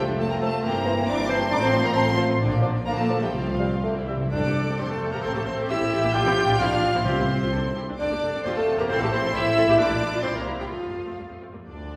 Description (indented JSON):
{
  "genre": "quick classical-period movement for symphony orchestra",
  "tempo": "120-137 BPM",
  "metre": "2/4",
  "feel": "rubato",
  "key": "F major",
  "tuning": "A4 = 445 Hz",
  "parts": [
    { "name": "clear chamber violin section", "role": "melody", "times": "0.0-12.0 s", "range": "D5 to G6", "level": "-34 LUFS", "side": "equal", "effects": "none" },
    { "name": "clear chamber violin section", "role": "second line", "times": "0.0-11.2 s", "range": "D4 to G5", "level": "-38 LUFS", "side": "equal", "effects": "none" },
    { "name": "dark clarinet", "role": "second line", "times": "0.0-11.2 s", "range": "F4 to G5", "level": "-33 LUFS", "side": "equal", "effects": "none" },
    { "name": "mellow hollow large flute ensemble", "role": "second line", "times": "0.0-11.2 s", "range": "F4 to Bb5", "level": "-34 LUFS", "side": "equal", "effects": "none" },
    { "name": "warm cor anglais", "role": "second line", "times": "0.0-11.2 s", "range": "F3 to F5", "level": "-36 LUFS", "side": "equal", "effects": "none" },
    { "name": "dark bassoon", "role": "accompaniment", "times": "0.0-4.2 s", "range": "E3 to A3", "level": "-33 LUFS", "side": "equal", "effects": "none" },
    { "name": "rich chamber viola section", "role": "accompaniment", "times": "0.0-12.0 s", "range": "D3 to A4", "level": "-34 LUFS", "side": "equal", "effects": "none" },
    { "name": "warm French horn section", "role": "sustained chords", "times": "0.0-12.0 s", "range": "F3 to G4", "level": "-31 LUFS", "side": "equal", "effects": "none" },
    { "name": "clear chamber double bass section", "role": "bass", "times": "0.0-12.0 s", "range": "F1 to F2", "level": "-32 LUFS", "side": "equal", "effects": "none" },
    { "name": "rich chamber cello section", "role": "bass", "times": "0.0-12.0 s", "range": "D2 to A4", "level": "-33 LUFS", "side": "equal", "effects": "none" },
    { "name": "timpani", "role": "percussion", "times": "0.0-0.4, 3.3-5.0, 7.1-7.5 s", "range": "F2 to C3", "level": "-32 LUFS", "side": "equal", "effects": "none" }
  ],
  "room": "wet recital hall reverb, RT60 1.4 s",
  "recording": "recorded in a church or concert hall",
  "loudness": "-23 LUFS",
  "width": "mono",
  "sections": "0.0-4.3 A section; 4.3-11.7 B section",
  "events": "timpani fill 3.8-4.3",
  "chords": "0.0 F; 0.6 C7/G; 1.5 F/A; 2.4 Bb; 3.3 Csus4; 3.8 C; 4.3 F; 5.2 Am; 6.1 Bb; 7.1 Csus4; 7.5 C; 8.0 F; 8.9 Am; 9.8 Bb; 10.2 C7; 10.7 F"
}